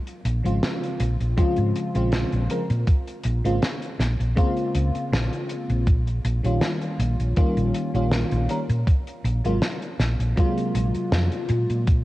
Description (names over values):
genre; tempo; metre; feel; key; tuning
vaporwave; 80 BPM; 4/4; swing 53% on 16ths; Bb dorian; A4 = 442 Hz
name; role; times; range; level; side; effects
damped 70s drum kit; drums; 0.1-12.0 s; hi-hat, snare drum; -28 LUFS; equal; vintage 12-bit sampler grit, gated reverb
hollow-body short-scale fingered electric bass; bass; 0.2-12.0 s; Ab1 to Bb2; -22 LUFS; equal; none
FM electric piano with soft pad layer; accompaniment; 0.4-11.9 s; C3 to Bb4; -26 LUFS; left 1 dB; analog chorus, tape echo
electronic kick drum; drums; 1.4-12.0 s; none; -19 LUFS; equal; vintage 12-bit sampler grit
room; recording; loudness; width
small room ambience; cassette tape; -21 LUFS; side -17 dB against mid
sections
0.0-12.0 A section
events
none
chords
0.0 Bbm9; 5.9 Eb9/Bb; 8.9 Ab13